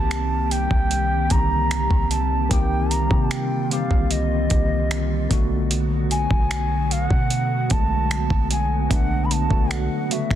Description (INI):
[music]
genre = contemporary R&B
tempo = 75 BPM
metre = 4/4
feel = straight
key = unclear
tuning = A4 = 442 Hz
[part]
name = mellow bansuri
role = melody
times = 0.0-10.4 s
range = Eb5 to B5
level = -26 LUFS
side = right 1 dB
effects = ping-pong delay
[part]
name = tine electric piano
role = accompaniment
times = 0.0-10.4 s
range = Db3 to G4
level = -26 LUFS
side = equal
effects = medium stereo tremolo
[part]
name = glassy FM pad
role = sustained chords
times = 0.0-10.4 s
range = D3 to G4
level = -29 LUFS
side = equal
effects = ensemble chorus, built-in reverb
[part]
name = clean 808-style bass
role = bass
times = 0.0-10.4 s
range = B1 to C3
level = -24 LUFS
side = equal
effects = none
[part]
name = dusty soul sampler-style drum kit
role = drums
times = 0.1-10.4 s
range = finger snaps, hi-hat, kick drum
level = -22 LUFS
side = equal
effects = overdrive, soft clipping on snare
[sound]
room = digital ambience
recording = dense, heavily limited modern master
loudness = -19 LUFS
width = side -11 dB against mid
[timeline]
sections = 0.0-10.4 A section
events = none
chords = 0.0 Cm7; 5.3 Bm7